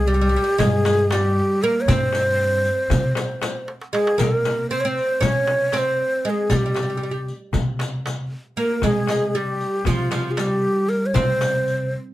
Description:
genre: Turkish makam ensemble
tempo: 233 BPM (eighths)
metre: 9/8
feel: straight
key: unclear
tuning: A4 = 440 Hz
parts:
  - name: breathy ney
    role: melody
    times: 0.0-11.9 s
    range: F4 to Db5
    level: -21 LUFS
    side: equal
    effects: none
  - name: oud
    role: second line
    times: 0.0-11.9 s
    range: F3 to Db4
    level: -25 LUFS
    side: right 2 dB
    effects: none
  - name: upright bass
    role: bass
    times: 0.0-11.9 s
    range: C2 to C3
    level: -24 LUFS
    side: equal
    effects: none
  - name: darbuka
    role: percussion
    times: 0.1-12.0 s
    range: none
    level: -27 LUFS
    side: right 1 dB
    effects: none
  - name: frame drum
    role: percussion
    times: 0.6-11.5 s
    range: none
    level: -27 LUFS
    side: left 5 dB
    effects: none
  - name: riq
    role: percussion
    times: 0.6-11.7 s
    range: none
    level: -33 LUFS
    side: left 2 dB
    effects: none
room: light reverb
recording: close, detailed microphones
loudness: -18 LUFS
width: side -15 dB against mid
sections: 0.0-4.2 A section; 4.2-12.1 B section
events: drum fill 3.7-4.2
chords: none

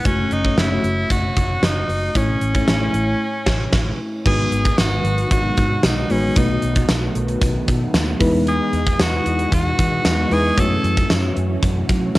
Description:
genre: 1980s-style pop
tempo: 114 BPM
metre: 4/4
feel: straight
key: unclear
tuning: A4 = 435 Hz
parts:
  - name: raspy tenor saxophone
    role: melody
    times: 0.0-11.1 s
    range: C#4 to A4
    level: -23 LUFS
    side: equal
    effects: cassette tape
  - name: FM electric piano with soft pad layer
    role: accompaniment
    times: 0.0-12.2 s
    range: G#2 to C#5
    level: -23 LUFS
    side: left 1 dB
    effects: chorus, tremolo, cassette tape
  - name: gated 80s drum kit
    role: drums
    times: 0.0-12.2 s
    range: crash cymbal, hi-hat, kick drum, snare drum, tambourine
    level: -20 LUFS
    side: equal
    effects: none
  - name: vintage muted fingered electric bass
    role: bass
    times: 0.1-12.2 s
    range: F#1 to F#3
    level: -22 LUFS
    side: equal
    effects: none
  - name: string machine, cellos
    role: sustained chords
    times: 4.3-12.2 s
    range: D#3 to D#5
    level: -27 LUFS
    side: equal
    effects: ensemble chorus, cassette tape
room: light reverb, studio reverb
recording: home recording on cassette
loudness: -16 LUFS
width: side -18 dB against mid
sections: 0.0-4.3 A section; 4.3-12.2 B section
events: band accent 3.2-4.3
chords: 0.1 F#m; 2.2 A; 4.3 G#m7; 6.4 B7; 8.2 Emaj7; 10.6 F#m7

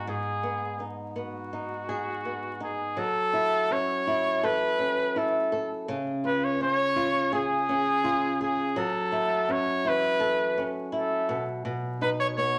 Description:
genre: acoustic pop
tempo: 83 BPM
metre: 4/4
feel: straight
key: unclear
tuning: A4 = 437 Hz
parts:
  - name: clear trumpet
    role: melody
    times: 0.0-12.6 s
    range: F#4 to C#5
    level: -29 LUFS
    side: equal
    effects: none
  - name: flamenco guitar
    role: accompaniment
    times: 0.0-12.6 s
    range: G#2 to B4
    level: -31 LUFS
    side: equal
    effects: none
room: wet large studio reverb, RT60 0.9 s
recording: vinyl crackle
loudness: -27 LUFS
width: mono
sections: 0.0-3.0 A section; 3.0-12.6 B section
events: none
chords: 0.0 G#m7; 3.0 F#m7; 5.9 C#; 8.8 F#m7; 11.3 B

